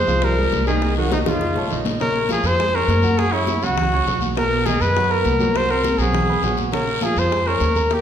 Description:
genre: Afro-Cuban jazz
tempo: 203 BPM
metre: 4/4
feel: straight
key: Bb minor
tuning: A4 = 435 Hz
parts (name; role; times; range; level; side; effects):
- warm trumpet; melody; 0.0-8.0 s; Eb4 to C5; -20 LUFS; left 1 dB; none
- breathy tenor saxophone; second line; 0.0-1.8 s; C3 to Ab3; -27 LUFS; left 3 dB; none
- warm grand piano; accompaniment; 0.0-8.0 s; B2 to Db6; -24 LUFS; right 4 dB; none
- upright bass; bass; 0.1-8.0 s; Bb1 to Gb2; -23 LUFS; equal; none
- congas; percussion; 0.1-8.0 s; none; -27 LUFS; left 1 dB; none
- guiro; percussion; 0.1-8.0 s; none; -32 LUFS; left 5 dB; none
- bongos; percussion; 0.2-8.0 s; none; -30 LUFS; left 5 dB; none
room: wet recital hall reverb, RT60 1.4 s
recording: recorded in a church or concert hall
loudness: -17 LUFS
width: side -9 dB against mid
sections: 0.0-2.0 A section; 2.0-8.0 B section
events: drum fill 1.1-2.0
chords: 0.0 Fm9; 0.8 Cm7b5; 1.4 Faug7; 2.0 Bbm9; 3.2 Gb5; 4.4 Bmaj7; 5.5 Ab9; 6.1 B5; 6.7 Bbm9

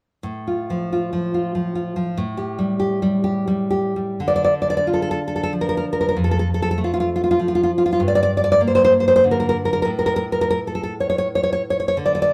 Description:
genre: romantic piece for solo classical guitar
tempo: 79-100 BPM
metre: 3/4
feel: rubato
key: unclear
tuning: A4 = 438 Hz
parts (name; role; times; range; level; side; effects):
- nylon-string guitar; solo; 0.2-12.3 s; F2 to D5; -20 LUFS; equal; none
room: moderate stone room reverb, RT60 1.0 s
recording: band playing live in one room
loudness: -20 LUFS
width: mono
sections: 0.2-4.2 A section; 4.2-12.3 B section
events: none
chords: 0.2 F/A; 2.2 Gsus2/A; 4.2 Dm; 6.2 F; 8.0 Gm; 9.9 N.C.

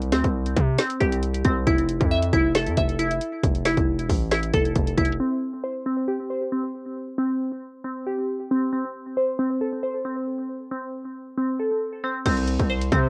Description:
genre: hip hop, trap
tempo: 136 BPM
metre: 4/4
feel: half-time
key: C major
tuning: A4 = 440 Hz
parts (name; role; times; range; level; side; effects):
- glassy wavetable pluck; arpeggios; 0.0-13.1 s; C4 to E5; -27 LUFS; equal; chorus, cassette tape, analog delay
- distorted 808-style bass; bass; 0.0-5.2, 12.3-13.1 s; E1 to C3; -27 LUFS; equal; distortion
- trap drum kit; drums; 0.0-5.2, 12.3-13.0 s; crash cymbal, hi-hat, kick drum, snare drum; -27 LUFS; equal; cassette tape
room: little or no reverb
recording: home recording on cassette, low-pass filter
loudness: -24 LUFS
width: mono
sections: 0.0-5.2 A section; 5.2-12.3 B section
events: filter sweep 5.2-12.3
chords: 0.0 C5; 1.7 Fmaj7; 5.2 C5; 8.7 Am; 12.3 N.C.

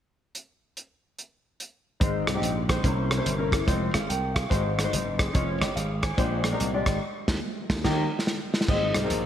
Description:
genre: uptempo gospel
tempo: 144 BPM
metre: 4/4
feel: swing 64% on 8ths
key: Ab major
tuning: A4 = 436 Hz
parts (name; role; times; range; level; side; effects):
- warm soul drum kit; drums; 0.3-9.2 s; crash cymbal, hi-hat, kick drum, rim click, snare drum; -27 LUFS; right 1 dB; gated reverb
- warm grand piano; accompaniment; 2.0-9.3 s; Ab2 to Ab5; -28 LUFS; left 2 dB; lush chorus
- glassy slap bass; bass; 2.0-9.3 s; F1 to Eb2; -29 LUFS; equal; none
room: moderate lush hall reverb, RT60 2.0 s, small room reverb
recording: bright 1980s-style digital production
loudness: -23 LUFS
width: side -10 dB against mid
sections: 0.3-2.0 A section; 2.0-8.7 B section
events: band accent 7.0-8.7; drum fill 7.8-8.7; grand piano fill 7.8-8.7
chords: 0.3 N.C.; 2.0 Ab; 2.8 C7b9; 3.7 Fm; 4.5 Ab7; 5.3 Db/F; 6.2 Bb13; 7.0 N.C.; 7.8 Eb; 8.7 Ab

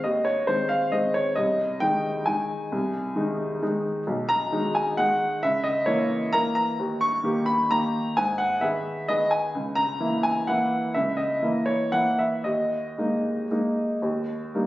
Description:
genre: classical, piano waltz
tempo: 110-142 BPM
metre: 3/4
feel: rubato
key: Ab major, G# minor from 4.1 s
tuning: A4 = 439 Hz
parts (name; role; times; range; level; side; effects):
- clear upright piano; solo; 0.0-14.7 s; B1 to C#6; -22 LUFS; equal; none
room: moderate recital hall reverb, RT60 1.6 s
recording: recorded on a phone in the room, studio reverb, compression, nothing above 7.9 kHz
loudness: -22 LUFS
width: side -16 dB against mid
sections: 0.0-14.7 A section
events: none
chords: 0.0 Ab; 1.4 Ab/C; 4.1 G#m/B; 5.4 A#dim/C#; 6.8 D#7; 8.2 G#m; 9.5 A#dim/C#; 12.4 D#sus4; 14.0 D#

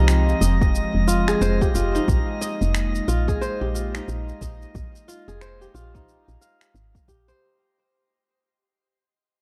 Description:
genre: organic downtempo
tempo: 90 BPM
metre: 4/4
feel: swing 60% on 16ths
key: unclear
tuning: A4 = 440 Hz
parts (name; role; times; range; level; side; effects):
- warbly tape-like pad; sustained chords; 0.0-7.4 s; F3 to G5; -30 LUFS; equal; chorus, built-in reverb, sidechain pumping, shimmer reverb
- kora; arpeggios; 0.0-8.5 s; Eb4 to F5; -29 LUFS; equal; digital delay, shimmer reverb
- woody FM bass; bass; 0.0-7.3 s; F1 to C2; -24 LUFS; equal; sidechain pumping
- drifting glass-harmonics texture; texture; 0.0-7.4 s; Eb5; -35 LUFS; equal; chorus, built-in reverb, shimmer reverb
- electronic finger snaps and shaker; drums; 0.1-7.4 s; none; -32 LUFS; equal; overdrive, small room ambience
- electronic kick drum; drums; 0.6-7.2 s; none; -26 LUFS; equal; overdrive, small room ambience
room: light reverb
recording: dark, warm production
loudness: -22 LUFS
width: mono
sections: 0.0-7.4 A section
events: fade-out 0.0-7.4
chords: 0.0 Fm7; 2.1 Bb7sus4

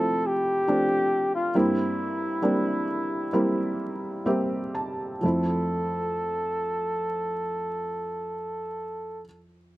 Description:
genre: pop ballad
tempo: 61-71 BPM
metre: 4/4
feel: straight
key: F major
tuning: A4 = 440 Hz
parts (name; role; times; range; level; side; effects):
- mellow flugelhorn; melody; 0.0-9.2 s; E4 to A4; -27 LUFS; equal; slapback echo
- felt-muted upright piano; accompaniment; 0.0-9.8 s; F2 to A5; -27 LUFS; right 1 dB; none
room: light reverb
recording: recorded outdoors, with no room sound, vinyl crackle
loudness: -24 LUFS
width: side -17 dB against mid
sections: 0.0-5.2 A section; 5.2-9.1 B section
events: slowing down 0.0-5.2; felt piano fill 3.8-5.2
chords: 0.0 Fmaj7; 1.5 C7; 5.2 Fmaj7

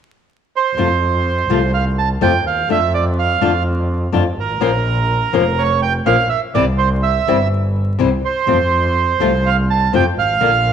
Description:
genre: tango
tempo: 124 BPM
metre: 4/4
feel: rubato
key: F major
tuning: A4 = 441 Hz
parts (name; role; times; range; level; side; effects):
- bandoneon; melody; 0.6-10.7 s; Bb4 to A5; -17 LUFS; right 7 dB; none
- flamenco guitar; accompaniment; 0.8-10.5 s; C3 to C5; -19 LUFS; left 8 dB; none
- rich double bass; bass; 0.8-10.7 s; F1 to F2; -18 LUFS; equal; none
room: moderate echo chamber reverb, RT60 1.8 s, small room ambience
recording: 1960s-style stereo with parts hard left and right, vinyl crackle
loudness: -14 LUFS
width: side -8 dB against mid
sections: 0.8-10.7 A section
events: none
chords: 0.0 N.C.; 0.8 F; 2.7 Dm/F; 4.6 Bbmadd9; 6.5 C; 8.5 F

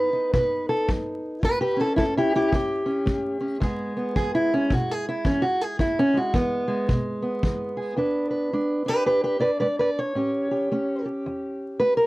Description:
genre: acoustic country blues, solo or duo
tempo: 110 BPM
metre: 4/4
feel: swing 61% on 8ths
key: E mixolydian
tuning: A4 = 440 Hz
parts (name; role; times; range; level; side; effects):
- fingerpicked steel-string acoustic guitar; melody; 0.0-12.1 s; E2 to D5; -22 LUFS; equal; none
- kick drum; drums; 0.3-7.6 s; none; -27 LUFS; equal; none
room: light reverb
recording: worn, warbling old tape, cassette tape, vinyl crackle, warbly pitch drift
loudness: -22 LUFS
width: side -19 dB against mid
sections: 0.0-8.0 A section; 8.0-12.1 A section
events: steel-string acoustic guitar solo 0.0-8.0, 8.0-12.1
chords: 0.0 B; 1.4 A7; 3.6 E; 8.0 E7; 10.2 A7

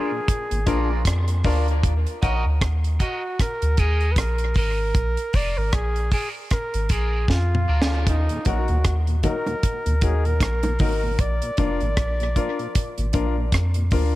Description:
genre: dub reggae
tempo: 77 BPM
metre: 4/4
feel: swing 58% on 16ths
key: Eb harmonic minor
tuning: A4 = 440 Hz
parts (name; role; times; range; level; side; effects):
- warm flugelhorn; melody; 0.0-13.5 s; Eb4 to D5; -28 LUFS; equal; tape echo
- electric guitar at the edge of break-up; accompaniment; 0.0-7.9 s; D4 to Eb5; -33 LUFS; right 4 dB; phaser, high-pass filter, tape echo
- warm grand piano; stabs; 0.0-14.1 s; D4 to Bb4; -30 LUFS; left 6 dB; high-pass filter, tape echo
- tonewheel organ; accompaniment; 0.1-14.1 s; Eb2 to Eb4; -35 LUFS; left 2 dB; overdrive, slow rotary speaker, high-pass filter, tape echo
- deep reggae drum kit; drums; 0.3-14.1 s; hi-hat, kick drum, rim click, snare drum, toms; -23 LUFS; equal; none
- soft dub sub bass; bass; 0.5-14.2 s; F1 to F2; -22 LUFS; equal; none
- bongos; percussion; 8.5-11.8 s; none; -31 LUFS; right 2 dB; tape echo
room: light reverb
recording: none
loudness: -20 LUFS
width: side -17 dB against mid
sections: 0.0-14.2 A section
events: break 0.0-8.1; filter sweep 0.0-8.1; drum fill 7.3-8.1; part muted 11.2-14.2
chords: 0.0 Bb; 1.8 Ebm; 5.0 Bb; 8.1 Ebm; 11.2 Bb

